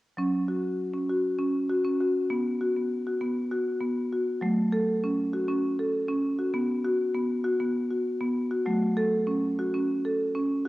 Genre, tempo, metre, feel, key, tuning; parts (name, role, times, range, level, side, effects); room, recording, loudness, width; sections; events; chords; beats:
world meditative; 198 BPM (eighths); 7/8; straight; F# minor; A4 = 440 Hz
marimba with medium hard mallets; arpeggios; 0.2-10.7 s; F#3 to A4; -25 LUFS; equal; cassette tape
wet spring reverb, RT60 2.0 s; home recording on cassette; -25 LUFS; side -17 dB against mid
0.2-4.4 A section; 4.4-10.7 B section
0.2 F#5; 2.3 B5; 4.4 F#m; 6.5 B5; 8.7 F#m
| 0.18 0.48 0.79 1.09 1.39 1.69 2.00 | 2.30 2.60 2.90 3.21 3.51 3.81 4.12 | 4.42 4.72 5.02 5.33 5.63 5.93 6.24 | 6.54 6.84 7.15 7.45 7.75 8.06 8.36 | 8.66 8.97 9.27 9.57 9.88 10.18 10.49